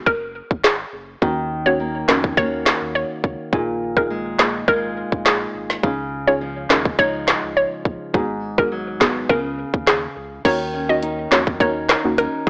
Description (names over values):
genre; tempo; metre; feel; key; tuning
dancehall; 104 BPM; 4/4; straight; Eb minor; A4 = 440 Hz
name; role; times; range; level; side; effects
soft round pluck; accompaniment; 0.0-12.5 s; Bb3 to Ab4; -24 LUFS; equal; chorus
hollow square pluck; melody; 0.1-12.5 s; Ab4 to Eb5; -20 LUFS; equal; chorus
sub bass with octave; bass; 0.1-12.5 s; Gb1 to F2; -36 LUFS; equal; none
island pop drum kit; drums; 0.1-12.5 s; crash cymbal, handclaps, hi-hat, kick drum, snare drum; -18 LUFS; equal; none
flamenco guitar; arpeggios; 1.2-12.5 s; Ab2 to Bb4; -25 LUFS; equal; none
room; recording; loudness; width
light reverb; dry, gritty hardware recording, transformer saturation, AM radio sound; -17 LUFS; side -34 dB against mid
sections
0.0-10.4 A section; 10.4-12.5 B section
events
none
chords
0.0 Ab7(no3); 1.2 Ebm7; 3.5 Bb7sus4; 5.8 Dbadd9; 8.1 Abm7; 9.3 Db7; 10.4 Ebm7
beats
0.07 0.64 | 1.22 1.80 2.37 2.95 | 3.53 4.10 4.68 5.26 | 5.83 6.41 6.99 7.57 | 8.14 8.72 9.30 9.87 | 10.45 11.03 11.60 12.18